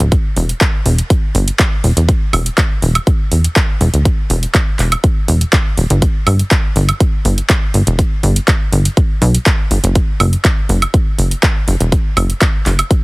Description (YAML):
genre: progressive house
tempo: 122 BPM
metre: 4/4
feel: straight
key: E minor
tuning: A4 = 441 Hz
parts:
  - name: plucky analog bass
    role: bass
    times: 0.0-12.8 s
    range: D1 to B1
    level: -13 LUFS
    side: equal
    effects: tube saturation, sidechain pumping
  - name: big-room dance drum kit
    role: drums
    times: 0.0-13.0 s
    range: handclaps, hi-hat, woodblock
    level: -18 LUFS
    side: right 1 dB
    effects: overdrive, sidechain pumping on hats, sidechain pumping on perc, sidechain pumping on cymbals
  - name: electronic kick drum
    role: drums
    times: 0.1-13.0 s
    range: none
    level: -13 LUFS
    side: equal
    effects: overdrive
room: little or no reverb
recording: heavily compressed radio sound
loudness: -11 LUFS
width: side -24 dB against mid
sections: 0.0-13.0 A section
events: none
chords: none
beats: | 0.12 0.61 1.10 1.59 | 2.09 2.58 3.07 3.56 | 4.05 4.54 5.04 5.53 | 6.02 6.51 7.00 7.50 | 7.99 8.48 8.97 9.46 | 9.96 10.45 10.94 11.43 | 11.92 12.41 12.91